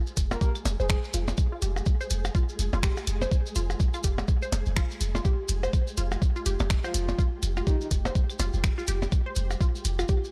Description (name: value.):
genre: minimal techno.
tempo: 124 BPM.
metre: 4/4.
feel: swing 59% on 16ths.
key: F minor.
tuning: A4 = 440 Hz.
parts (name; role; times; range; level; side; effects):
flickering grainy texture; texture; 0.0-10.3 s; Ab3 to Ab4; -44 LUFS; equal; built-in reverb, sidechain pumping.
maracas; percussion; 0.1-10.3 s; none; -42 LUFS; equal; none.
punchy sub bass; bass; 0.2-10.0 s; F1; -31 LUFS; equal; tube saturation, sidechain pumping.
electronic kick drum; drums; 0.2-10.2 s; none; -27 LUFS; equal; none.
punchy analog drum machine; drums; 0.2-10.0 s; finger snaps, hi-hat; -36 LUFS; equal; overdrive.
breathy flute-like synth lead; melody; 0.3-1.0, 6.8-7.9 s; Eb4 to Bb4; -40 LUFS; equal; chorus, analog delay.
resonant blip pluck; riff; 0.3-10.2 s; F4 to C5; -38 LUFS; equal; phaser, sidechain pumping, analog delay.
percussion blips and claves; percussion; 0.3-10.1 s; none; -36 LUFS; equal; analog delay.
room: digital ambience.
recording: dry, gritty hardware recording, cassette tape.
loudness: -27 LUFS.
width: mono.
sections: 0.0-10.3 A section.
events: none.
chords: 0.0 F5.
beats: 0.41 0.90 | 1.38 1.86 2.35 2.83 | 3.31 3.80 4.28 4.77 | 5.25 5.74 6.22 6.70 | 7.19 7.67 8.15 8.64 | 9.12 9.61 10.09.